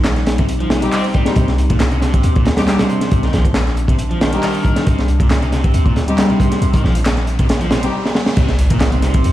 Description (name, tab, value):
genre	breakbeat, breaks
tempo	137 BPM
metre	4/4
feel	swing 53% on 16ths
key	C minor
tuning	A4 = 439 Hz
part	warbly tape-like pad	sustained chords	0.0-9.3 s	G3 to Eb4	-26 LUFS	left 1 dB	chorus, built-in reverb, sidechain pumping
part	warm 808-style bass	bass	0.0-9.3 s	Bb1 to D2	-17 LUFS	equal	none
part	crunchy breakbeat drum kit	drums	0.0-9.3 s	crash cymbal, hi-hat, kick drum, snare drum	-16 LUFS	equal	none
part	house drum kit	drums	0.0-9.3 s	handclaps, hi-hat, ride cymbal	-27 LUFS	equal	overdrive
part	overdriven semi-hollow guitar	riff	0.4-9.3 s	Bb2 to C4	-22 LUFS	equal	spring reverb, ping-pong delay
part	dark chamber string section	stabs	0.8-7.9 s	G3 to G4	-20 LUFS	left 1 dB	vintage 12-bit sampler grit, ping-pong delay
part	riser and impact	sound effects	6.7-9.3 s	none	-28 LUFS	equal	none
room	light reverb, small room ambience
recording	played on a big sound system in a bare room, large studio reverb, vinyl crackle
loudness	-13 LUFS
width	side -14 dB against mid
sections	0.0-8.4 A section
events	riser 6.7-8.4; drum fill 8.0-8.4; impact 8.4-9.3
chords	0.0 Cm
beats	0.05 0.49 0.93 | 1.36 1.80 2.24 2.68 | 3.12 3.55 3.99 4.43 | 4.87 5.30 5.74 6.18 | 6.62 7.06 7.49 7.93 | 8.37 8.81 9.25